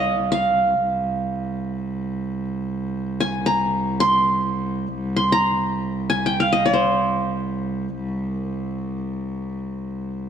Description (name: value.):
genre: arabic.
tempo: 113 BPM (eighths).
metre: 10/8.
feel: straight.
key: C maqam bayati.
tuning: A4 = 440 Hz.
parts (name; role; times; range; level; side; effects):
qanun; melody; 0.0-8.5 s; C5 to C6; -19 LUFS; equal; none.
clear cello; drone; 0.0-10.3 s; C2; -26 LUFS; right 2 dB; none.
room: moderate concert hall reverb, RT60 2.1 s.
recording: dark, warm production.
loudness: -20 LUFS.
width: side -8 dB against mid.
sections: 0.0-10.3 A section.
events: none.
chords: none.